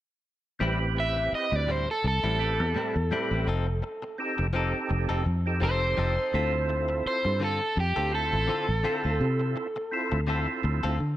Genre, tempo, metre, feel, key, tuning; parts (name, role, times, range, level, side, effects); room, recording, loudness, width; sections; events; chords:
blues; 84 BPM; 4/4; swing 56% on 16ths; A minor; A4 = 440 Hz
percussive tonewheel organ; accompaniment; 0.6-11.0 s; C4 to B4; -32 LUFS; right 2 dB; overdrive, chorus vibrato, slow rotary speaker
direct-recorded clean electric guitar; stabs; 0.6-11.0 s; A2 to A4; -35 LUFS; left 5 dB; spring reverb
fingered electric bass; bass; 0.6-11.2 s; F1 to D3; -27 LUFS; equal
crunchy overdriven guitar; melody; 1.0-10.2 s; G4 to E5; -28 LUFS; right 1 dB
light reverb, digital ambience; -25 LUFS; side -13 dB against mid
0.6-11.2 A section
0.6 Am7; 3.5 F7; 6.3 Dm7